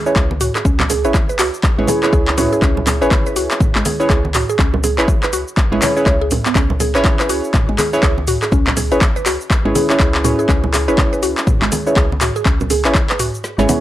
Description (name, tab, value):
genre	afro house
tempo	122 BPM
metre	4/4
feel	swing 60% on 16ths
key	C# minor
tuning	A4 = 442 Hz
part	mallet-like synth pluck	arpeggios	0.0-13.8 s	G#3 to C#5	-21 LUFS	equal	chorus, phaser, sidechain pumping, analog delay
part	deep mellow chord stab	stabs	0.0-13.8 s	C#4 to C#5	-19 LUFS	right 1 dB	chorus, sidechain pumping, analog delay
part	afro-pop drum kit	drums	0.1-13.8 s	cabasa, handclaps, hi-hat, snare drum, toms	-20 LUFS	left 1 dB	overdrive
part	woody FM bass	bass	0.2-13.7 s	G#1 to C#2	-22 LUFS	equal	sidechain pumping
part	electronic kick drum	drums	0.2-13.1 s	none	-15 LUFS	equal	overdrive
part	congas	percussion	0.3-13.8 s	none	-24 LUFS	right 3 dB	none
room	digital ambience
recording	dry, gritty hardware recording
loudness	-13 LUFS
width	side -14 dB against mid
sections	0.0-13.8 A section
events	kick drops out 13.4-13.8; drum fill 13.4-13.8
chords	0.0 C#m7